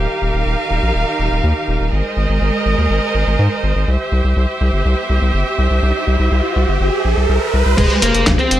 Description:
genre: italo disco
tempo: 123 BPM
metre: 4/4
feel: straight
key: unclear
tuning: A4 = 436 Hz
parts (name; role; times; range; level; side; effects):
- bright studio string section; sustained chords; 0.0-8.6 s; Eb3 to F5; -19 LUFS; right 2 dB; none
- round analog bass; bass; 0.0-8.6 s; Eb1 to Ab2; -16 LUFS; equal; none
- riser; sound effects; 5.0-7.8 s; none; -22 LUFS; right 2 dB; none
- high-gain lead guitar; melody; 7.8-8.6 s; Ab3 to C5; -15 LUFS; left 1 dB; distortion
- dusty soul sampler-style drum kit; drums; 7.8-8.6 s; crash cymbal, handclaps, hi-hat, snare drum; -18 LUFS; left 1 dB; none
- electronic kick drum; drums; 7.8-8.4 s; none; -17 LUFS; equal; none
room: light reverb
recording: none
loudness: -14 LUFS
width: side -12 dB against mid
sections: 0.0-7.8 A section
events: riser 5.0-7.8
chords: 0.0 Ebadd9; 1.9 Abadd9; 3.9 C; 7.8 Fmadd9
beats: 0.46 0.95 1.44 | 1.93 2.42 2.90 3.39 | 3.88 4.37 4.85 5.34 | 5.83 6.32 6.80 7.29 | 7.78 8.27

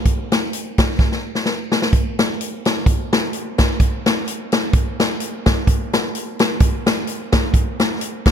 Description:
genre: gospel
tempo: 128 BPM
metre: 4/4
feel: swing 56% on 8ths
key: none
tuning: none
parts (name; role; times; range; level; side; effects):
- swinging big-band drum kit; drums; 0.1-8.3 s; hi-hat, kick drum, snare drum; -16 LUFS; equal; none
room: moderate plate reverb, RT60 2.4 s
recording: dreamy mix soaked in reverb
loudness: -17 LUFS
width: side -8 dB against mid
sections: 0.0-8.3 A section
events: drum fill 1.0-1.9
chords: none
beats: | 0.05 0.52 0.99 1.46 | 1.92 2.39 2.86 3.33 | 3.79 4.26 4.73 5.20 | 5.67 6.13 6.60 7.07 | 7.53 8.00

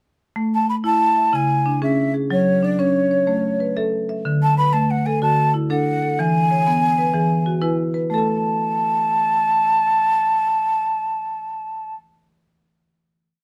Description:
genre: southern african traditional, mbira-style interlocking cycle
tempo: 124 BPM (dotted quarters)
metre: 12/8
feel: straight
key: A major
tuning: A4 = 440 Hz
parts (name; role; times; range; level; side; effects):
- marimba with medium hard mallets; arpeggios; 0.4-12.1 s; C#3 to A5; -22 LUFS; equal; none
- breathy mellow jazz flute; melody; 0.5-11.9 s; C#5 to B5; -21 LUFS; equal; none
room: light reverb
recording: close, detailed microphones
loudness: -19 LUFS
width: mono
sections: 0.4-8.1 A section; 8.1-11.9 final note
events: none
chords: 0.4 A5; 1.3 C#m; 2.3 F#5; 3.3 A; 4.2 D; 6.2 E; 8.1 N.C.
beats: | 0.37 0.85 1.34 1.82 | 2.31 2.79 3.28 3.77 | 4.25 4.73 5.22 5.70 | 6.18 6.66 7.14 7.63 | 8.11 8.59 9.07 9.55 | 10.03 10.51 10.99 11.47

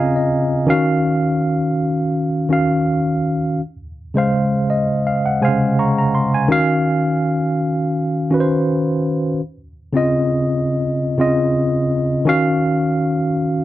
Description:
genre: soul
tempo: 83 BPM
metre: 4/4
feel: swing 54% on 16ths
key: Eb dorian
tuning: A4 = 440 Hz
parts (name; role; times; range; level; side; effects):
- tine electric piano; solo; 0.0-13.6 s; C3 to Db6; -15 LUFS; equal; medium stereo tremolo
room: moderate studio reverb, RT60 0.6 s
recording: dry, close 1970s-style studio recording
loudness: -16 LUFS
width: side -14 dB against mid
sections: 0.0-13.6 A section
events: tine electric piano fill 0.0-0.7, 4.3-6.5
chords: 0.0 Dbmaj9; 0.7 Ebm9; 3.6 Bbm11; 6.5 Ebm9; 9.4 Dbmaj9; 12.3 Ebm9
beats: | 0.69 1.42 2.15 2.87 | 3.60 4.33 5.05 5.78 | 6.50 7.23 7.95 8.67 | 9.40 10.12 10.84 11.56 | 12.29 13.01

